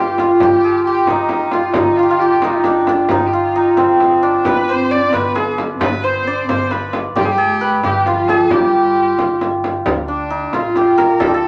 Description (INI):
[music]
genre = Persian modal ensemble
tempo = 89 BPM (dotted quarters)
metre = 6/8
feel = straight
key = G dastgah homayun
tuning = A4 = 439 Hz
[part]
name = santur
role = melody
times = 0.0-11.5 s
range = C4 to D5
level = -16 LUFS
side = equal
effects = none
[part]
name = clear kamancheh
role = second line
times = 0.0-11.5 s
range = C4 to D5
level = -24 LUFS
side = equal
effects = none
[part]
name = upright bass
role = bass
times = 0.0-11.5 s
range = G1 to D2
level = -32 LUFS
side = equal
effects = none
[part]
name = frame drum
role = percussion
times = 0.2-11.3 s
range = none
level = -24 LUFS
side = equal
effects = none
[part]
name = dark chamber cello section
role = second line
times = 4.5-9.4 s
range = F3 to D4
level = -28 LUFS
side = equal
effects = none
[sound]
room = wet studio reverb, RT60 0.5 s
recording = none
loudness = -15 LUFS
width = mono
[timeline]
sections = 0.0-9.9 A section; 9.9-11.5 B section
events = none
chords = none